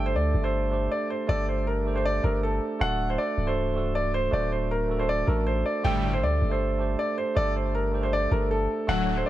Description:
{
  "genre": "hip hop",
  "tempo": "158 BPM",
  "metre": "4/4",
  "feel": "half-time",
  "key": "G harmonic minor",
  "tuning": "A4 = 440 Hz",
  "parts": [
    { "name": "dark grand piano", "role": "melody", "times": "0.0-9.3 s", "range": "A4 to G5", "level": "-27 LUFS", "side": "equal", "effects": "none" },
    { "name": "tine electric piano", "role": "accompaniment", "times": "0.0-9.3 s", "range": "A3 to C5", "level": "-30 LUFS", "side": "right 5 dB", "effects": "none" },
    { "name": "long sustained 808-style bass", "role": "bass", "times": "0.0-9.2 s", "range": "C1 to D2", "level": "-27 LUFS", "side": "equal", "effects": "none" },
    { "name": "big bright polysynth", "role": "stabs", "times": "5.8-6.1, 8.9-9.2 s", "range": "D2 to G3", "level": "-31 LUFS", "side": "left 4 dB", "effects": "analog chorus" }
  ],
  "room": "little or no reverb",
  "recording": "none",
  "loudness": "-24 LUFS",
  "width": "side -14 dB against mid",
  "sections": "0.0-9.3 A section",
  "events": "none",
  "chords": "0.0 Gsus2; 2.8 D; 5.8 Gsus2",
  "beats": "0.15 0.53 0.91 | 1.29 1.67 2.05 2.43 | 2.81 3.19 3.57 3.95 | 4.33 4.71 5.09 5.47 | 5.85 6.23 6.61 6.99 | 7.37 7.75 8.13 8.51 | 8.88 9.27"
}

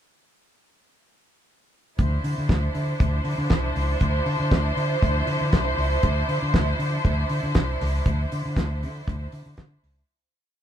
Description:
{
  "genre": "disco",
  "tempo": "119 BPM",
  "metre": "4/4",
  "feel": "straight",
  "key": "D minor",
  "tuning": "A4 = 438 Hz",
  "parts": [
    { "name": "clear studio string section", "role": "sustained chords", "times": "2.0-10.0 s", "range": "F3 to C5", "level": "-27 LUFS", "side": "equal", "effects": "none" },
    { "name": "fingered electric bass", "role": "bass", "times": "2.0-10.0 s", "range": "C2 to D3", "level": "-25 LUFS", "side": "equal", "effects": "none" },
    { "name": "damped 70s drum kit", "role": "drums", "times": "2.0-10.0 s", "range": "hi-hat, kick drum, snare drum", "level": "-22 LUFS", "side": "equal", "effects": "none" }
  ],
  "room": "moderate studio reverb, RT60 0.6 s",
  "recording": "band playing live in one room",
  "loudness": "-21 LUFS",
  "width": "side -10 dB against mid",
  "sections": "2.0-10.1 groove",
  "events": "fade-out 8.1-10.1",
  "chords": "2.0 Dm9",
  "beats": "| 1.99 2.49 3.00 3.51 | 4.01 4.52 5.02 5.53 | 6.04 6.54 7.05 7.55 | 8.06 8.57 9.07 9.58"
}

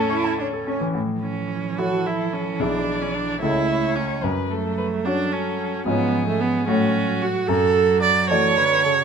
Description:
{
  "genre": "quick classical-period movement for piano quartet",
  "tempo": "74 BPM (dotted quarters)",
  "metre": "6/8",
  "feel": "straight",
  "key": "A major",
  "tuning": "A4 = 441 Hz",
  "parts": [
    { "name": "warm violin", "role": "melody", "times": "0.0-8.9 s", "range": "F#4 to D5", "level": "-30 LUFS", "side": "left 7 dB", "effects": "none" },
    { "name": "rich cello", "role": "second line", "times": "0.0-9.0 s", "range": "C#3 to E4", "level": "-28 LUFS", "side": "right 5 dB", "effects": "none" },
    { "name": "clear concert grand piano", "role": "accompaniment", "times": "0.0-9.0 s", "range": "B1 to C#6", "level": "-25 LUFS", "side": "left 2 dB", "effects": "none" },
    { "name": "clear viola", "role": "accompaniment", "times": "0.0-9.0 s", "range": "A3 to D5", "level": "-22 LUFS", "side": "right 5 dB", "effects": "none" }
  ],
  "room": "light reverb",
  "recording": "minimal, uncompressed stereo recording",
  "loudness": "-19 LUFS",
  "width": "side -6 dB against mid",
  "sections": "0.9-9.0 A section",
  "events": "none",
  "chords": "0.0 A; 2.6 E7/B; 3.4 A/C#; 4.2 F#m; 5.9 C#7/G#; 6.7 F#m/A; 7.5 D/F#",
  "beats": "0.09 | 0.94 1.78 | 2.60 3.42 | 4.23 5.05 | 5.86 6.67 | 7.49 8.30"
}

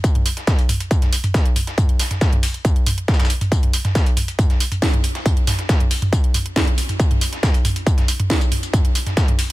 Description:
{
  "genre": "techno",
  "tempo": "138 BPM",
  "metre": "4/4",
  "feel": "straight",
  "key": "none",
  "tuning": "none",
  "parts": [
    { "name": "dusty soul sampler-style drum kit", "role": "drums", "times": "0.0-9.5 s", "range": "hi-hat, snare drum, tambourine", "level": "-29 LUFS", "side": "left 2 dB", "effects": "overdrive, high-pass filter on perc, high-pass filter on snare, high-pass filter on hats, high-pass filter on room" },
    { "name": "electronic kick drum", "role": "drums", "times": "0.0-9.3 s", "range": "none", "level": "-17 LUFS", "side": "equal", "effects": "distortion, overdrive" },
    { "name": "techno drum kit", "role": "drums", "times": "0.0-9.5 s", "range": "hi-hat, snare drum, toms", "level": "-22 LUFS", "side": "right 1 dB", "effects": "overdrive" }
  ],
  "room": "digital ambience",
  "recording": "none",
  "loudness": "-16 LUFS",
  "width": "side -18 dB against mid",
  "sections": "0.0-9.5 A section",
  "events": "none",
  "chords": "none",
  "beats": "| 0.04 0.47 0.91 1.34 | 1.78 2.21 2.65 3.08 | 3.52 3.95 4.39 4.82 | 5.26 5.69 6.13 6.56 | 7.00 7.43 7.87 8.30 | 8.73 9.17"
}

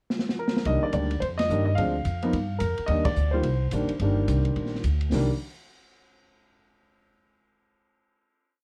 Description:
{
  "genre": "jazz piano trio",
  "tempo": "216 BPM",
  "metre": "4/4",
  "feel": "swing 61% on 8ths",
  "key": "C minor",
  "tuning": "A4 = 440 Hz",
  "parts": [
    { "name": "open jazz drum kit", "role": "drums", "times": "0.1-5.2 s", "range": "hi-hat, kick drum, ride cymbal, snare drum", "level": "-34 LUFS", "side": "equal", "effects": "none" },
    { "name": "warm grand piano", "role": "melody", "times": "0.4-5.3 s", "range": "Eb3 to F5", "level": "-29 LUFS", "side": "equal", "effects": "none" },
    { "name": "upright bass", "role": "bass", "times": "0.7-5.3 s", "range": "G1 to G2", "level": "-28 LUFS", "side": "equal", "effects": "none" }
  ],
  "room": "light reverb",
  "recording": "worn, warbling old tape, cassette tape, warbly pitch drift",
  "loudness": "-26 LUFS",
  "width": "mono",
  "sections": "0.0-0.7 pickup bar; 0.7-5.1 A section; 5.1-6.2 final chord",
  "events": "drum fill 0.1-0.7; band accent 1.4, 3.0",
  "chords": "0.0 N.C.; 0.7 Cm9; 1.8 Dm7b5; 2.3 Fsus24; 2.9 Cm9; 5.1 N.C.",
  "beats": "0.11 0.39 | 0.66 0.94 1.22 1.50 | 1.78 2.06 2.33 2.61 | 2.89 3.17 3.45 3.72 | 4.00 4.28 4.56 4.84 | 5.11"
}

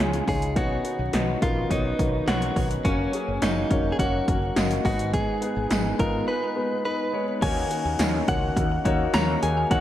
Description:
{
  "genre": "1980s-style pop",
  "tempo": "105 BPM",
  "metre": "4/4",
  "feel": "straight",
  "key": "unclear",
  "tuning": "A4 = 441 Hz",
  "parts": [
    { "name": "direct-recorded clean electric guitar", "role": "melody", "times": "0.0-9.8 s", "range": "C#4 to A#5", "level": "-28 LUFS", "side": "equal", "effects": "vibrato effect, digital delay" },
    { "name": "warm baby grand piano", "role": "accompaniment", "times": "0.0-9.8 s", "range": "G#2 to D#5", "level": "-28 LUFS", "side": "left 3 dB", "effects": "none" },
    { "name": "brassy analog pad", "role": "sustained chords", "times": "0.0-9.8 s", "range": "C#3 to F#4", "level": "-34 LUFS", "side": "right 1 dB", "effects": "chorus" },
    { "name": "mellow fretless electric bass", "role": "bass", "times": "0.0-9.8 s", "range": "E#1 to D#2", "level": "-29 LUFS", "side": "equal", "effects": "ensemble chorus" },
    { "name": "80s electronic pad drums", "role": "drums", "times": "0.1-9.8 s", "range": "crash cymbal, hi-hat, kick drum, snare drum, tambourine", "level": "-26 LUFS", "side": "equal", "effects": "gated reverb" },
    { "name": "tambourine", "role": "percussion", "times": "3.4-9.3 s", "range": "none", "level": "-44 LUFS", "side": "right 7 dB", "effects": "none" }
  ],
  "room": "moderate plate reverb, RT60 3.1 s",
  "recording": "bright 1980s-style digital production, vinyl crackle",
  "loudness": "-22 LUFS",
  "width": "side -12 dB against mid",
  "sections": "0.0-7.4 A section; 7.4-9.8 B section",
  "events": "none",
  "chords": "0.0 C#add9; 0.6 Badd9; 2.9 F#; 4.8 G#m; 7.4 D#m7",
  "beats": "| 0.56 1.14 1.71 2.28 | 2.85 3.42 3.99 4.56 | 5.14 5.71 6.28 6.85 | 7.42 7.99 8.56 9.14 | 9.71"
}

